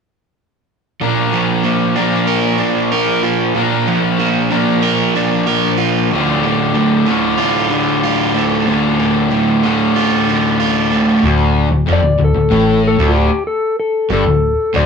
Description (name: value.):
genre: rock.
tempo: 94 BPM.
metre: 4/4.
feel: straight.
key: D minor.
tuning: A4 = 440 Hz.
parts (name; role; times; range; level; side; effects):
crunchy overdriven guitar; riff; 1.0-14.9 s; D2 to Bb4; -16 LUFS; right 5 dB; none.
distorted electric guitar; riff; 1.0-14.9 s; D2 to Bb4; -16 LUFS; left 4 dB; distortion.
hollow-body short-scale picked electric bass; bass; 11.2-14.9 s; D1 to A1; -16 LUFS; left 1 dB; none.
clean lap steel guitar; melody; 11.9-14.9 s; F4 to D5; -16 LUFS; left 3 dB; none.
room: moderate studio reverb, RT60 0.5 s.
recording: band playing live in one room.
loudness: -12 LUFS.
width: side -6 dB against mid.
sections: 1.0-11.2 A section; 11.2-14.9 B section.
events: none.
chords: 1.0 Bb; 6.1 Dm.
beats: | 0.99 1.64 2.27 2.92 | 3.56 4.20 4.84 5.48 | 6.12 6.76 7.40 8.04 | 8.68 9.32 9.96 10.60 | 11.23 11.87 12.51 13.15 | 13.79 14.42.